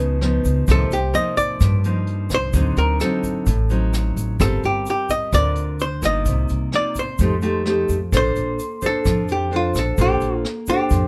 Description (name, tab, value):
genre	bossa nova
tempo	129 BPM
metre	4/4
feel	straight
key	Bb major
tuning	A4 = 440 Hz
part	archtop guitar, miked and amplified	melody	0.0-11.1 s	F4 to Eb5	-25 LUFS	equal	none
part	nylon-string guitar	accompaniment	0.0-11.1 s	G2 to C5	-26 LUFS	equal	none
part	upright bass	bass	0.0-11.1 s	G1 to G2	-23 LUFS	equal	none
part	vintage brush drum kit	drums	0.2-11.0 s	hi-hat, kick drum, rim click	-27 LUFS	equal	none
part	egg shaker	percussion	0.4-11.1 s	none	-41 LUFS	equal	none
room	little or no reverb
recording	close, detailed microphones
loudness	-20 LUFS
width	mono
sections	0.0-11.1 A section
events	none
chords	0.0 Db9; 0.7 Cm11; 2.5 D7b9; 4.4 Gm7; 6.3 Cm7; 7.2 F9; 8.1 Bbmaj9